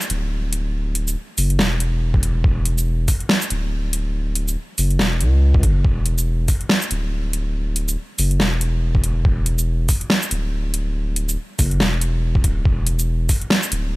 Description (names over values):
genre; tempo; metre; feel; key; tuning
deep dubstep; 141 BPM; 4/4; swing 58% on 16ths, half-time; unclear; A4 = 440 Hz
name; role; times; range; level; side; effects
dubstep drum kit; drums; 0.0-13.8 s; hi-hat, shaker, snare drum; -22 LUFS; equal; small room reverb
saturated sub bass; bass; 0.1-14.0 s; D1 to C#2; -20 LUFS; equal; none
electronic kick drum; drums; 2.1-13.4 s; none; -18 LUFS; equal; small room reverb
room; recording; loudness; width
little or no reverb; none; -17 LUFS; side -20 dB against mid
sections
0.0-14.0 A section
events
none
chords
none